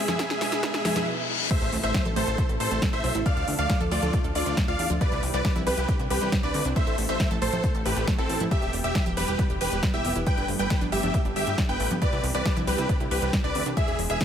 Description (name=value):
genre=uplifting trance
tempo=137 BPM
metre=4/4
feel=straight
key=A minor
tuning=A4 = 440 Hz
part: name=supersaw chords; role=melody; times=0.0-14.2 s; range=C4 to G5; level=-29 LUFS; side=equal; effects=sidechain pumping, tape echo
part: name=lush unison pad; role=sustained chords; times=0.0-14.2 s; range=B2 to B4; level=-36 LUFS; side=equal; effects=chorus, sidechain pumping
part: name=wide unison pluck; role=arpeggios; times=0.0-14.2 s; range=G3 to A4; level=-33 LUFS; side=right 3 dB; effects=sidechain pumping, tape echo
part: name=riser, reverse cymbal and impact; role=sound effects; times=0.0-3.3 s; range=none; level=-33 LUFS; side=left 3 dB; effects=none
part: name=big-room dance drum kit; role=drums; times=0.1-14.2 s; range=congas, crash cymbal, hi-hat, snare drum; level=-31 LUFS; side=left 1 dB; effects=overdrive, sidechain pumping on hats, sidechain pumping on perc, sidechain pumping on cymbals
part: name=electronic kick drum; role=drums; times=0.2-14.2 s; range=none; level=-26 LUFS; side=equal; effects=high-pass filter on kick
part: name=plucky unison lead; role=second line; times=1.5-14.2 s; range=A4 to G5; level=-33 LUFS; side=equal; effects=ensemble chorus, sidechain pumping, tape echo
part: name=plucky analog bass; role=bass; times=1.6-14.2 s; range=E1 to E2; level=-30 LUFS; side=equal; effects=sidechain pumping
room=little or no reverb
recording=none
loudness=-23 LUFS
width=side -9 dB against mid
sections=0.0-1.5 A section; 1.5-14.2 B section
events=build-up 0.0-1.5; drum fill 0.0-1.1; riser 0.0-1.1; reverse cymbal 0.6-1.5; drop 1.5-14.2; impact 1.5-3.3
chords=0.0 E; 1.5 Am; 3.3 Dm; 5.0 Cadd9; 6.8 Am; 8.5 Em; 10.3 Gadd9; 12.0 Cadd9